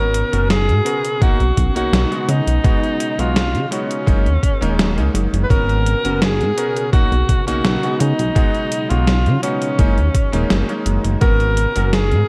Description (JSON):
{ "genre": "vaporwave", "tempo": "84 BPM", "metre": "4/4", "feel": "straight", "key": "G# minor", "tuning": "A4 = 444 Hz", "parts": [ { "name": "bright alto saxophone", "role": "melody", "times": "0.0-12.3 s", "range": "C#4 to B4", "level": "-24 LUFS", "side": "equal", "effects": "vintage 12-bit sampler grit, tape echo" }, { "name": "clear electric grand piano", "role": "accompaniment", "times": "0.0-11.9 s", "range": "G#3 to A#4", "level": "-27 LUFS", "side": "equal", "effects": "subtle chorus" }, { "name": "soft string machine", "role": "sustained chords", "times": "0.0-12.3 s", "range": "B2 to A#4", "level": "-31 LUFS", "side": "equal", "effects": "none" }, { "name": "chorused synth bass", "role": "bass", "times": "0.0-12.2 s", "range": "D#1 to C#3", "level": "-20 LUFS", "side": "equal", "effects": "none" }, { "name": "gated 80s digital drum machine", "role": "drums", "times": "0.1-12.3 s", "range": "hi-hat, snare drum", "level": "-24 LUFS", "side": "equal", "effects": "gated reverb, gated reverb snare" }, { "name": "electronic kick drum", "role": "drums", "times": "1.2-11.4 s", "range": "none", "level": "-19 LUFS", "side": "equal", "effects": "none" } ], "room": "little or no reverb", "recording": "none", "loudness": "-17 LUFS", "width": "mono", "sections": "0.0-12.3 A section", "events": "none", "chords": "0.0 G#m11; 1.2 Bmaj9; 2.3 C#9sus4; 4.1 F#69; 5.5 G#m11; 6.9 Bmaj9; 8.0 C#9sus4; 9.8 F#69; 11.2 G#m11", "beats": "0.50 1.22 1.93 | 2.65 3.36 4.08 4.79 | 5.50 6.22 6.93 7.65 | 8.36 9.07 9.79 10.50 | 11.22 11.93" }